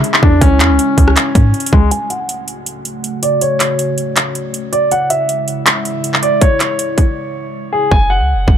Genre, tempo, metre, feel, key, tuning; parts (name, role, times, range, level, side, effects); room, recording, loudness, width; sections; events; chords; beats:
hip hop, trap; 160 BPM; 4/4; half-time; F# minor; A4 = 438 Hz
clear grand piano; melody; 0.0-8.6 s; G#3 to G#5; -16 LUFS; equal; low-pass filter, ping-pong delay
dark analog pad; sustained chords; 0.0-7.9 s; C#3 to F#4; -23 LUFS; right 1 dB; chorus, phaser, low-pass filter
clean 808-style bass; bass; 0.0-1.9, 7.9-8.6 s; F#1 to G#2; -13 LUFS; equal
trap drum kit; drums; 0.0-8.6 s; handclaps, hi-hat, kick drum, rim click; -13 LUFS; equal; overdrive
little or no reverb; -11 LUFS; side -9 dB against mid
0.0-1.9 A section; 1.9-7.9 B section
filter sweep 1.9-7.9; break 7.2-7.9; hi-hats muted 7.9-8.6
0.0 C#m; 1.9 F#m; 4.9 C#m; 7.9 F#5
0.04 | 0.41 0.79 1.17 1.54 | 1.92 2.29 2.67 3.04 | 3.42 3.79 4.17 4.54 | 4.92 5.29 5.67 6.04 | 6.42 6.79 7.17 7.54 | 7.92 8.29